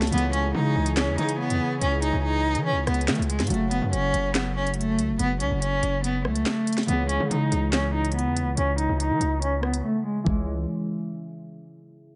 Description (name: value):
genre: hip hop, drill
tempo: 142 BPM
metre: 4/4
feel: half-time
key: C# minor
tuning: A4 = 443 Hz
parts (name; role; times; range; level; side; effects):
- rich cello; melody; 0.0-10.5 s; G#3 to D#4; -28 LUFS; equal; low-pass filter, delay
- concert harp; accompaniment; 0.0-10.5 s; C#3 to G#4; -33 LUFS; equal; low-pass filter
- warbly tape-like pad; sustained chords; 0.0-3.5 s; E3 to G#5; -38 LUFS; equal; chorus, built-in reverb
- distorted 808-style bass; bass; 0.0-10.7 s; F#1 to E3; -30 LUFS; equal; distortion
- drill drum kit; drums; 0.0-10.4 s; handclaps, hi-hat, kick drum, rim click, snare drum; -31 LUFS; equal; none
room: light reverb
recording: nothing above 10.8 kHz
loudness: -25 LUFS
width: mono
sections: 0.0-3.5 A section; 3.5-10.3 B section; 10.3-12.0 C section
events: filter sweep 3.5-10.3; silent gap 9.8-10.3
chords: 0.1 C#m; 3.5 F#m; 6.9 C#m